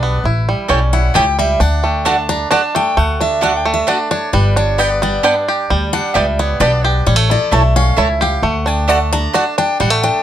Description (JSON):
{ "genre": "bluegrass", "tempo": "132 BPM", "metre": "3/4", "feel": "straight", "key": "D major", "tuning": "A4 = 444 Hz", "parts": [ { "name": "bluegrass banjo", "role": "melody", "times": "0.0-10.2 s", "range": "G3 to G4", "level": "-17 LUFS", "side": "right 2 dB", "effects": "none" }, { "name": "picked steel-string acoustic guitar", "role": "accompaniment", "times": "0.0-10.2 s", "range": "B4 to Bb5", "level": "-18 LUFS", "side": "left 2 dB", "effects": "none" }, { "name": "upright bass", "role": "bass", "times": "0.0-10.1 s", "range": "G1 to D2", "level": "-16 LUFS", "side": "left 1 dB", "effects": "none" }, { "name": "mandolin", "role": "stabs", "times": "0.7-9.4 s", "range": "A3 to A5", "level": "-15 LUFS", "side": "right 3 dB", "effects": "none" } ], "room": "little or no reverb", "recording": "close, detailed microphones", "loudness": "-12 LUFS", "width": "side -11 dB against mid", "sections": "0.0-3.0 A section; 3.0-10.2 A section", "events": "steel-string acoustic guitar solo 0.0-10.2", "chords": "0.2 A7; 1.6 D; 4.3 G; 7.1 A; 8.4 D", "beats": "| 0.24 0.69 1.15 | 1.60 2.06 2.51 | 2.97 3.42 3.88 | 4.33 4.79 5.25 | 5.70 6.16 6.61 | 7.07 7.52 7.98 | 8.43 8.89 9.34 | 9.80" }